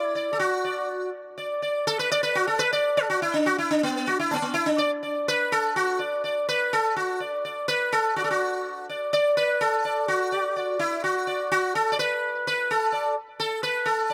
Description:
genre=indian classical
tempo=125 BPM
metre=4/4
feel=straight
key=D raga bhupali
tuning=A4 = 440 Hz
part: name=sitar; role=solo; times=0.0-14.1 s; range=B3 to D5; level=-25 LUFS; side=equal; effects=none
room=light reverb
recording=none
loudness=-25 LUFS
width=mono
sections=0.0-8.2 A section; 8.2-14.1 B section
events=speeding up 0.0-14.1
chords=none

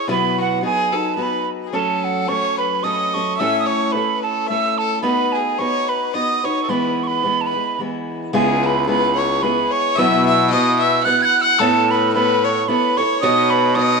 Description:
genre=celtic folk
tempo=110 BPM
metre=3/4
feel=swing 54% on 8ths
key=unclear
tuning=A4 = 440 Hz
part: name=mellow hollow mid whistle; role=melody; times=0.0-14.0 s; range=F#5 to G#6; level=-19 LUFS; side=right 10 dB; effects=none
part: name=rich fiddle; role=second line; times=0.0-14.0 s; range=F#4 to F#5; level=-22 LUFS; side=left 14 dB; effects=none
part: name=fingerpicked steel-string acoustic guitar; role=accompaniment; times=0.0-14.0 s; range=A2 to C#5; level=-21 LUFS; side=equal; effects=none
part: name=mellow baritone saxophone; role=bass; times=8.3-14.0 s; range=C#2 to B2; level=-22 LUFS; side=left 3 dB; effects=none
room=moderate plate reverb, RT60 2.5 s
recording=1960s-style stereo with parts hard left and right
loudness=-16 LUFS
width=side -4 dB against mid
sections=0.0-8.3 A section; 8.3-14.0 B section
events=none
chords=0.1 Bsus4; 0.6 B; 1.7 F#m; 3.4 A; 5.0 B; 6.7 E; 8.3 C#m7; 10.0 Bsus4; 11.6 Aadd9; 13.2 Badd9

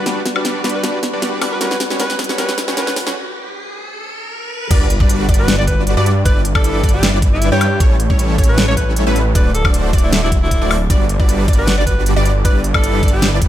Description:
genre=future bass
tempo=155 BPM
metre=4/4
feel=swing 53% on 16ths, half-time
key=E dorian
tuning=A4 = 440 Hz
part: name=breathy alto saxophone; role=melody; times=0.0-2.9, 5.4-13.3 s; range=E4 to D5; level=-23 LUFS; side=equal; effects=sidechain pumping, ping-pong delay
part: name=tine electric piano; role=accompaniment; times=0.0-3.2 s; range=G3 to B4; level=-25 LUFS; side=left 3 dB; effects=vintage 12-bit sampler grit, sidechain pumping, digital delay
part: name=ethereal airy pad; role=sustained chords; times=0.0-4.7 s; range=G3 to C5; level=-36 LUFS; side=left 2 dB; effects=none
part: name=dense compressed supersaw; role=riff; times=0.0-13.5 s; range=G3 to D5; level=-21 LUFS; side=right 1 dB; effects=sidechain pumping
part: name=riser and sub drop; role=sound effects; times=1.9-6.3 s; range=none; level=-27 LUFS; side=equal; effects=none
part: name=pop drum kit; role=drums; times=0.1-13.5 s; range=crash cymbal, hi-hat, snare drum, woodblock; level=-20 LUFS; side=left 1 dB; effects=studio reverb
part: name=wide unison pluck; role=arpeggios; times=4.7-13.5 s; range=B4 to D5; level=-25 LUFS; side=right 1 dB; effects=sidechain pumping
part: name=wide detuned saw bass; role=bass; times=4.7-13.5 s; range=D1 to G2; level=-17 LUFS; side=equal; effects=chorus, sidechain pumping
part: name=electronic kick drum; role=drums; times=4.7-13.5 s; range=none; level=-14 LUFS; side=equal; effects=studio reverb
room=little or no reverb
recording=high-pass filter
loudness=-12 LUFS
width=side -12 dB against mid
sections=0.0-4.7 A section; 4.7-13.5 B section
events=build-up 0.0-4.7; drum fill 0.0-3.2; filter sweep 0.0-4.7; riser 1.9-4.7; break 3.2-4.7; drop 4.7-13.5; impact 4.7-6.3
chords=0.1 Em7/G; 1.6 A7; 3.2 D7; 4.7 Gmaj7; 6.3 Em7/G; 7.8 A7; 9.4 D7; 10.9 Gmaj7; 12.4 Em7/G

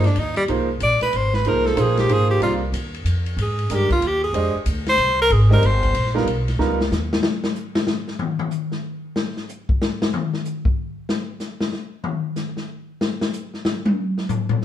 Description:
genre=modal jazz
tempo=187 BPM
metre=3/4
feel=swing 64% on 8ths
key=F dorian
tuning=A4 = 440 Hz
part: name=breathy tenor saxophone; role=melody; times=0.0-6.2 s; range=G3 to D5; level=-20 LUFS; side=equal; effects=none
part: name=warm grand piano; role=accompaniment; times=0.0-6.8 s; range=Eb3 to Eb5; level=-23 LUFS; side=right 3 dB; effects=none
part: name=upright bass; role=bass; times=0.0-7.2 s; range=G1 to Ab2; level=-21 LUFS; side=equal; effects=none
part: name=open jazz drum kit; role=drums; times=0.0-14.6 s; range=hi-hat, kick drum, ride cymbal, snare drum, toms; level=-24 LUFS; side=left 2 dB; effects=none
room=moderate stone room reverb, RT60 0.9 s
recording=band playing live in one room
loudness=-19 LUFS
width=side -11 dB against mid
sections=0.0-7.2 A section; 7.2-14.6 A section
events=tenor saxophone solo 0.0-7.2; drum fill 6.6-7.2; drum solo 7.2-14.6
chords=0.0 Fm9; 6.3 G7alt; 7.2 N.C.

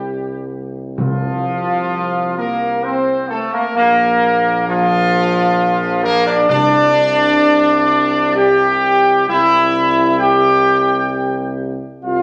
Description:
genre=classical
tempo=65 BPM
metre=3/4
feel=straight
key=unclear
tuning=A4 = 445 Hz
part: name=clear trumpet section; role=melody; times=0.0-12.2 s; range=F4 to G5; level=-22 LUFS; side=equal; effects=none
part: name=clear trombone section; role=sustained chords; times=0.0-12.2 s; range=F3 to G4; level=-17 LUFS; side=equal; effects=none
part: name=dark French horn section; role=sustained chords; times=0.0-12.2 s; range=F3 to G4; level=-26 LUFS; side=equal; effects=none
part: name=warm tuba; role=bass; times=0.0-12.2 s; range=Bb1 to C2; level=-25 LUFS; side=equal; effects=none
part: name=timpani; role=percussion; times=1.0-7.8 s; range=C3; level=-26 LUFS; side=equal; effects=none
room=wet stone room reverb, RT60 1.5 s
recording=none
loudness=-15 LUFS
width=mono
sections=0.0-12.2 A section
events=none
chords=0.0 C5; 3.8 Bb5; 6.5 N.C.

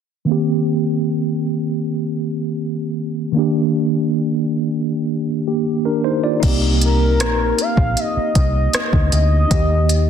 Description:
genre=contemporary R&B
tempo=78 BPM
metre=4/4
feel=straight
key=C minor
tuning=A4 = 440 Hz
part: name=mellow tine electric piano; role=accompaniment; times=0.2-10.1 s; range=Eb3 to D5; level=-19 LUFS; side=right 1 dB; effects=medium stereo tremolo
part: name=vintage muted fingered electric bass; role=bass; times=6.4-10.1 s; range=Bb1 to Eb2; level=-17 LUFS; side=equal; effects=none
part: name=smooth R&B drum kit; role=drums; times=6.4-10.1 s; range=crash cymbal, hi-hat, kick drum, rim click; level=-19 LUFS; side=equal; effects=none
part: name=gliding portamento lead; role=melody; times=6.8-10.1 s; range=Bb4 to F5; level=-21 LUFS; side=left 2 dB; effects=chorus, ping-pong delay
room=light reverb, digital ambience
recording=dense, heavily limited modern master, low-pass filter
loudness=-16 LUFS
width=side -8 dB against mid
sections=0.3-6.4 A section; 6.4-10.1 B section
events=filter sweep 0.3-6.4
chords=0.3 Cm7; 3.4 Ebmaj7; 6.4 Cm7; 9.5 Eb

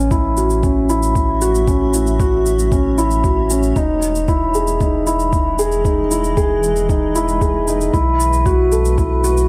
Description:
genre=piano and strings electronica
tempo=115 BPM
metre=4/4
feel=straight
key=E major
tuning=A4 = 439 Hz
part: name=granular cloud pad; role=sustained chords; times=0.0-9.5 s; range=E3 to E5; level=-34 LUFS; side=equal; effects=built-in reverb, sidechain pumping
part: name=felt-muted upright piano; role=riff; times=0.0-9.5 s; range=C#4 to A4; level=-19 LUFS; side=equal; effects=tape echo
part: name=warm sub bass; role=bass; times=0.0-9.5 s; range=E1 to B1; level=-22 LUFS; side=equal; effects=sidechain pumping
part: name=electronic kick drum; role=drums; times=0.1-9.1 s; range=none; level=-21 LUFS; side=equal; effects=overdrive
part: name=shaker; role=drums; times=0.1-9.5 s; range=none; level=-30 LUFS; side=equal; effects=none
room=light reverb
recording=none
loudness=-16 LUFS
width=mono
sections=0.0-9.5 A section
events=fade-in on ambient pad 0.0-9.5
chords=0.0 A6; 3.8 Emaj7; 7.9 B7sus4

